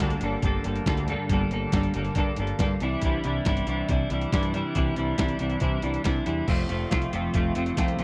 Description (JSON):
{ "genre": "indie rock", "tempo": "139 BPM", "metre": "4/4", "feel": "straight", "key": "unclear", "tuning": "A4 = 435 Hz", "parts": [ { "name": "semi-hollow electric guitar", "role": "riff", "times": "0.0-8.0 s", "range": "F2 to A4", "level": "-29 LUFS", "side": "equal", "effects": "double-tracked" }, { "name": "growling picked electric bass", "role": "bass", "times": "0.0-8.0 s", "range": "F1 to C3", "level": "-33 LUFS", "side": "equal", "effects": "overdrive" }, { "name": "lo-fi sampler-style drum kit", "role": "drums", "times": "0.0-8.0 s", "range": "crash cymbal, hi-hat, kick drum, snare drum", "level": "-30 LUFS", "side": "equal", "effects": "none" } ], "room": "little or no reverb", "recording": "dry, close 1970s-style studio recording", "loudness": "-26 LUFS", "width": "mono", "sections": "0.0-8.0 A section", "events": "none", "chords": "0.0 Gmadd9; 2.8 Cadd9; 6.5 F" }